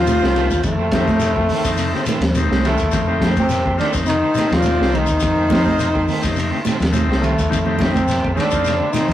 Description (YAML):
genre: afrobeat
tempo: 105 BPM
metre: 4/4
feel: straight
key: F mixolydian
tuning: A4 = 440 Hz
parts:
  - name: clear trombone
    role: melody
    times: 0.0-9.1 s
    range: A3 to F4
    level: -20 LUFS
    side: left 2 dB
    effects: none
  - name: bright baritone saxophone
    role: second line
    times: 0.0-9.1 s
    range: A2 to F3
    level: -30 LUFS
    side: right 4 dB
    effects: tape echo
  - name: clear trumpet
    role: second line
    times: 0.0-9.1 s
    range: F4 to D5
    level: -33 LUFS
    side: right 4 dB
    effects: none
  - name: combo organ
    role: accompaniment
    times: 0.0-9.1 s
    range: A3 to A4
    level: -25 LUFS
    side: left 2 dB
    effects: none
  - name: mellow electric guitar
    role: arpeggios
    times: 0.0-9.1 s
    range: C3 to F3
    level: -26 LUFS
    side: left 4 dB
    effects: spring reverb
  - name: deep dub fingered electric bass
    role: bass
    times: 0.0-9.1 s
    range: C2 to F2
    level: -22 LUFS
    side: equal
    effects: none
  - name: crunchy breakbeat drum kit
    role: drums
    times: 0.1-9.1 s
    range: hi-hat, kick drum, ride cymbal, snare drum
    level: -22 LUFS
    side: equal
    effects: none
  - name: congas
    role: percussion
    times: 0.1-9.1 s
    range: none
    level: -26 LUFS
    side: right 4 dB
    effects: none
  - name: shekere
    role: percussion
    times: 0.1-9.1 s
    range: none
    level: -30 LUFS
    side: left 4 dB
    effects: none
  - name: electric guitar at the edge of break-up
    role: stabs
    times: 0.2-9.1 s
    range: Eb3 to C4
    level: -28 LUFS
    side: right 4 dB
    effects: tremolo
  - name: claves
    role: percussion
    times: 7.8-9.1 s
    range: none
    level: -39 LUFS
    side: equal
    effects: none
room: moderate studio reverb, RT60 0.6 s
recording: rough rehearsal-room recording, warm saturation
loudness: -15 LUFS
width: side -12 dB against mid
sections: 0.0-9.1 A section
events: none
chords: 0.0 F7